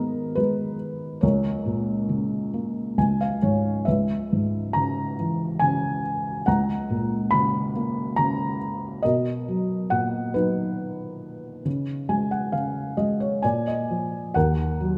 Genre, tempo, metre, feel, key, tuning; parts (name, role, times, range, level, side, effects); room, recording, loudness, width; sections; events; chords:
classical, lyrical solo piano; 69 BPM; 3/4; rubato; A4 = 440 Hz
felt-muted upright piano; solo; 0.0-15.0 s; C#2 to B5; -25 LUFS; equal
wet recital hall reverb, RT60 1.6 s; recorded in a church or concert hall; -25 LUFS; mono
0.0-14.4 A section
felt piano fill 2.5-3.9, 11.7-14.4
0.0 G#m; 1.2 A#m/C#; 3.0 C#5; 3.9 C#m7; 6.5 F#/C#; 9.0 Bmaj7; 11.7 C#5; 13.4 A#7; 14.4 Ebm